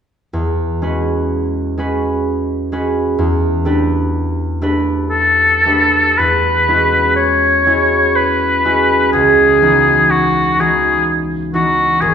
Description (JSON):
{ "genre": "classical, impressionist duo for oboe and harp", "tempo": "62 BPM", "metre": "3/4", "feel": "uneven beats, rubato", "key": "E major", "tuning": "A4 = 440 Hz", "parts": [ { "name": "concert harp", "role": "accompaniment", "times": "0.3-12.1 s", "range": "G#1 to B4", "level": "-16 LUFS", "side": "right 1 dB", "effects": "none" }, { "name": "warm oboe", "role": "melody", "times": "5.1-12.1 s", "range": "F#4 to C#5", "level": "-12 LUFS", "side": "left 2 dB", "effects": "none" } ], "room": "wet recital hall reverb, RT60 1.3 s", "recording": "recorded in a church or concert hall", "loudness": "-12 LUFS", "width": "side -8 dB against mid", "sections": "0.3-6.2 A section; 6.2-12.1 B section", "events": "none", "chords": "0.3 E69; 3.2 G69/E; 6.2 E69; 9.1 C#m11", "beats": "| 0.33 1.31 2.25 | 3.18 4.12 5.11 | 6.18 7.17 8.15 | 9.13 10.11 11.07 | 12.02" }